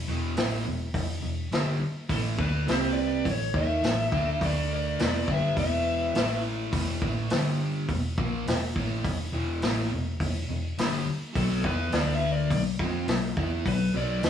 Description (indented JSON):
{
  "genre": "blues rock power trio and southern rock",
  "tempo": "104 BPM",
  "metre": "4/4",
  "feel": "straight",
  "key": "unclear",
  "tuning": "A4 = 444 Hz",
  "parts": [
    { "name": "overdriven semi-hollow guitar", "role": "riff", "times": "0.0-14.3 s", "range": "E2 to F4", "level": "-30 LUFS", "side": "equal", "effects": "none" },
    { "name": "vintage muted fingered electric bass", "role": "bass", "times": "0.0-14.3 s", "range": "E1 to F2", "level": "-31 LUFS", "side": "equal", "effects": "none" },
    { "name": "vintage drum kit", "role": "drums", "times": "0.4-14.3 s", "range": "hi-hat, kick drum, snare drum", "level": "-30 LUFS", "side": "left 1 dB", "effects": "none" },
    { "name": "overdriven slide guitar", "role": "melody", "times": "2.1-6.4, 11.4-14.3 s", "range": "A4 to E5", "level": "-30 LUFS", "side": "left 2 dB", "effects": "none" },
    { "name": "dark smooth lead guitar", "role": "second line", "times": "2.1-6.4, 11.3-14.3 s", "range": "E4 to B4", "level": "-39 LUFS", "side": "right 2 dB", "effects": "overdrive" }
  ],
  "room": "moderate studio reverb, RT60 0.8 s",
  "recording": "band playing live in one room, studio ambience",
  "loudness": "-25 LUFS",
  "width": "side -9 dB against mid",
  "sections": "0.0-14.3 A section",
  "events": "none",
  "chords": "0.0 E5; 2.1 A5; 2.7 C5; 3.3 A5; 4.4 D5; 5.0 E5; 6.1 A5; 6.7 E5; 7.3 G5; 7.9 E5; 11.3 B5; 11.9 D5; 12.5 B5",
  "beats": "0.36 0.94 1.51 | 2.09 2.67 3.25 3.83 | 4.41 4.99 5.57 6.14 | 6.72 7.30 7.88 8.46 | 9.04 9.61 10.19 10.77 | 11.35 11.93 12.50 13.08 | 13.66 14.23"
}